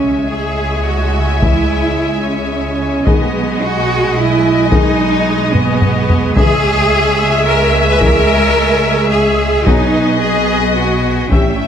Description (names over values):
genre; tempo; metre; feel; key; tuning
cinematic, epic orchestral film score; 109 BPM; 3/4; straight; C# minor; A4 = 442 Hz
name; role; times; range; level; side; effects
rich symphonic violin section; melody; 0.0-11.7 s; G5 to G#5; -24 LUFS; left 2 dB; none
rich studio violin section; second line; 0.0-11.7 s; D#5 to E5; -21 LUFS; left 4 dB; none
rich symphonic viola section; accompaniment; 0.0-11.7 s; G#3 to C#4; -22 LUFS; right 1 dB; none
warm woodwind section; sustained chords; 0.0-11.7 s; G3 to E5; -22 LUFS; left 1 dB; none
rich symphonic cello section; bass; 0.0-11.7 s; B3 to B4; -16 LUFS; right 2 dB; none
warm symphonic double bass section; bass; 0.0-11.7 s; A1 to C#2; -18 LUFS; right 2 dB; none
dark French horn section; sustained chords; 1.4-11.5 s; D#3 to G#4; -21 LUFS; left 5 dB; none
solo taiko drums; drums; 1.4-11.7 s; none; -16 LUFS; equal; none
room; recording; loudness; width
light reverb; none; -11 LUFS; side -8 dB against mid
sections
0.0-11.7 A section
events
drum fill 5.5-6.4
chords
0.0 C#m; 3.1 B6; 6.4 C#m; 9.7 B6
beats
0.32 0.87 | 1.42 1.97 2.52 | 3.07 3.62 4.17 | 4.72 5.27 5.82 | 6.37 6.92 7.47 | 8.02 8.57 9.12 | 9.67 10.22 10.77 | 11.32